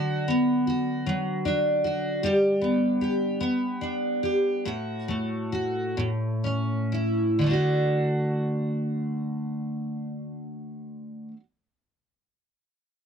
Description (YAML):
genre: pop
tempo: 39-51 BPM (dotted quarters)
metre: 6/8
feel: straight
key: D major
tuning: A4 = 444 Hz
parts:
  - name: picked steel-string acoustic guitar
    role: accompaniment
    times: 0.0-11.4 s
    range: A2 to G4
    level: -24 LUFS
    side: equal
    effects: double-tracked left and right
room: light reverb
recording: none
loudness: -24 LUFS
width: side -7 dB against mid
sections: 0.0-7.4 A section; 7.4-10.5 B section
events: slowing down 2.2-7.4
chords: 0.0 Bm/D; 2.2 G; 4.6 F#m/A; 6.0 A; 7.4 D